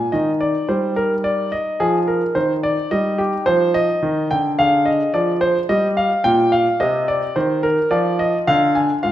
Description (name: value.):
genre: classical-period piano sonatina.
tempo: 108 BPM.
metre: 4/4.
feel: rubato.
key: Eb major.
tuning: A4 = 440 Hz.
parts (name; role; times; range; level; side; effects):
clear concert grand piano; solo; 0.0-9.1 s; Ab2 to Ab5; -16 LUFS; equal; none.
room: wet recital hall reverb, RT60 1.5 s.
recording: minimal, uncompressed stereo recording.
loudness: -16 LUFS.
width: side -12 dB against mid.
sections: 0.0-9.1 A section.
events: none.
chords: 0.1 Eb; 2.4 Ebmaj13; 4.6 Ddim; 5.7 Gm; 6.8 Cm; 7.9 Ddim.